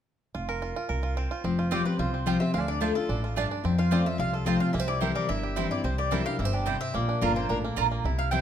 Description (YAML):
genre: bluegrass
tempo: 218 BPM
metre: 4/4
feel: straight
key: F major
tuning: A4 = 438 Hz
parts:
  - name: bluegrass banjo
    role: melody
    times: 0.3-8.4 s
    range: Bb3 to Bb4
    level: -34 LUFS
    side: right 5 dB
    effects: none
  - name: upright bass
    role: bass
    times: 0.3-8.4 s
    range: F1 to F2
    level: -32 LUFS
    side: right 1 dB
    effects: none
  - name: picked steel-string acoustic guitar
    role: accompaniment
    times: 1.4-8.4 s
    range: F2 to G4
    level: -28 LUFS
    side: left 3 dB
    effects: none
  - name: mandolin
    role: melody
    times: 1.7-8.4 s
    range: G4 to G5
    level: -33 LUFS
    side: left 2 dB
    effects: none
  - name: mandolin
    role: stabs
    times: 1.7-8.4 s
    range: A3 to Bb5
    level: -32 LUFS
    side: right 9 dB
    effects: none
room: wet recital hall reverb, RT60 1.4 s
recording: none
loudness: -25 LUFS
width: side -9 dB against mid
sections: 0.3-1.4 A section; 1.4-8.4 B section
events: none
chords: 0.3 F5; 1.4 Fsus2; 2.5 Dm; 3.6 F; 4.7 C; 5.8 Cadd9; 6.9 Bb